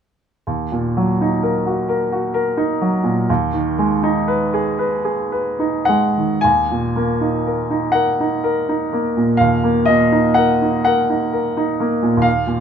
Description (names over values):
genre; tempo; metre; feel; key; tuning
classical, romantic nocturne for solo piano; 33-46 BPM (dotted quarters); 12/8; rubato; Eb minor; A4 = 441 Hz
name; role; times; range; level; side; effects
bright baby grand piano; solo; 0.5-12.6 s; Eb2 to Ab5; -15 LUFS; equal; none
room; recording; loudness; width
light reverb; close, detailed microphones; -15 LUFS; side -7 dB against mid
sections
0.5-6.4 A section; 6.4-12.6 B section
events
none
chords
0.5 Ebm; 3.3 Abm/Eb; 6.4 Ebm